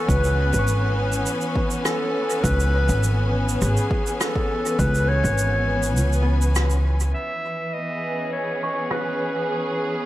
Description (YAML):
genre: ambient dub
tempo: 102 BPM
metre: 4/4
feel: straight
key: C# minor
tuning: A4 = 439 Hz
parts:
  - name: warm clarinet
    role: melody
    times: 0.0-10.1 s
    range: G#4 to E5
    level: -26 LUFS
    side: equal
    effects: dub echo
  - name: clear studio string section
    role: sustained chords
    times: 0.0-10.1 s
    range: E3 to G#5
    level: -26 LUFS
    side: left 1 dB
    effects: low-pass filter
  - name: concert harp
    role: arpeggios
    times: 0.0-2.2, 6.2-10.1 s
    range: B3 to C#6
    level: -35 LUFS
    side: right 1 dB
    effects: low-pass filter, dub echo
  - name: upright bass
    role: bass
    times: 0.1-7.1 s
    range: G#1 to C#2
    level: -20 LUFS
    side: equal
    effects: none
  - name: electronic kick drum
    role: drums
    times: 0.1-5.4 s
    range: none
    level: -26 LUFS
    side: equal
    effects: none
  - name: shaker and rim click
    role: drums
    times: 0.1-9.0 s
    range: none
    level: -30 LUFS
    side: right 2 dB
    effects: low-pass filter on snare, low-pass filter on perc, low-pass filter on room, dub echo
room: moderate spring reverb, RT60 2.5 s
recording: none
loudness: -20 LUFS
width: side -14 dB against mid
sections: 0.0-7.1 A section; 7.1-10.1 B section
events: kick drops out 6.0-7.1; band accent 6.6; filter sweep on drum 7.1-10.1; filter sweep on string section 7.1-10.1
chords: 0.0 C#m7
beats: | 0.09 0.67 1.26 1.85 | 2.44 3.03 3.62 4.20 | 4.79 5.38 5.97 6.56 | 7.14 7.73 8.32 8.91 | 9.50